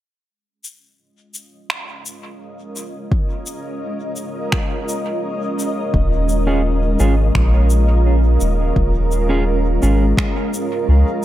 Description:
ambient dub; 85 BPM; 4/4; straight; A4 = 440 Hz
granular cloud pad; sustained chords; 2.3-11.2 s; Ab3 to Eb5; -22 LUFS; right 1 dB; built-in reverb
shaker and finger snaps; drums; 0.6-10.7 s; -26 LUFS; equal; dub echo
electronic kick drum; drums; 3.1-10.3 s; -20 LUFS; equal; overdrive
soft dub sub bass; bass; 5.9-11.0 s; Eb1 to Db2; -15 LUFS; equal
mellow electric guitar; stabs; 6.5-10.1 s; Db4 to Ab4; -25 LUFS; right 3 dB; spring reverb, dub echo
little or no reverb; echo-heavy mix; -15 LUFS; side -14 dB against mid
0.3-5.9 A section; 5.9-11.2 B section
fade-in on ambient pad 0.3-5.9
0.3 Eb9sus4

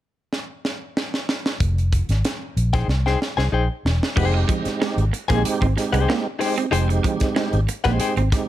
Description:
funk; 94 BPM; 4/4; straight; F minor; A4 = 440 Hz
tight funk drum kit; drums; 0.3-8.5 s; crash cymbal, hi-hat, kick drum, snare drum; -24 LUFS; equal
vintage muted fingered electric bass; bass; 1.6-8.3 s; E1 to C2; -20 LUFS; equal
direct-recorded clean electric guitar; accompaniment; 2.7-8.1 s; Eb4 to Ab5; -24 LUFS; left 7 dB; tremolo
electric guitar at the edge of break-up; riff; 4.2-8.4 s; F3 to C4; -28 LUFS; right 8 dB
tonewheel organ; stabs; 4.2-8.5 s; Ab3 to G4; -25 LUFS; right 4 dB; overdrive, chorus vibrato, slow rotary speaker
small room ambience; -19 LUFS; side -13 dB against mid
0.0-1.6 A section; 1.6-4.2 B section; 4.2-8.5 C section
drum fill 0.3-1.6, 2.9-4.2
0.0 N.C.; 1.6 Fm9

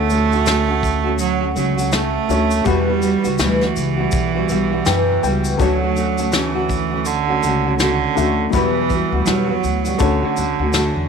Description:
acoustic pop; 82 BPM; 4/4; swing 60% on 16ths; D major; A4 = 440 Hz
bright cello; second line; 0.0-11.1 s; D3 to A3; -20 LUFS; right 10 dB
felt-muted upright piano; accompaniment; 0.0-11.1 s; F#3 to G5; -26 LUFS; left 12 dB
nylon-string guitar; accompaniment; 0.0-11.1 s; E2 to F#4; -21 LUFS; left 1 dB; double-tracked left and right
upright bass; bass; 0.0-11.1 s; B1 to D3; -22 LUFS; left 1 dB
soft brush drum kit; drums; 0.1-10.9 s; kick drum, shaker, snare drum; -23 LUFS; left 2 dB
small room reverb; 1960s-style stereo with parts hard left and right; -15 LUFS; side -6 dB against mid
0.0-11.1 A section
felt piano fill 4.5-5.6
0.0 Dmaj7; 2.7 Emadd9; 5.6 Dmaj7; 8.5 Emadd9; 10.0 Dmaj7

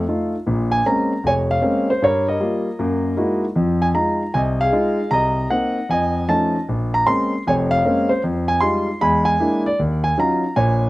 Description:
solo jazz; 155 BPM; 4/4; swing 64% on 8ths; Bb minor; A4 = 436 Hz
dark concert grand piano; solo; 0.0-10.9 s; F1 to C6; -17 LUFS; equal
little or no reverb; recorded outdoors, with no room sound; -17 LUFS; side -18 dB against mid
0.5-10.9 A section
0.5 Bbm9; 2.0 Eb9/G; 2.8 Gb13; 3.6 Fm7; 5.1 Cm7b5; 5.9 F7alt; 6.7 Bbm9; 8.2 Fm9; 9.0 E7#11; 9.8 Ebm9

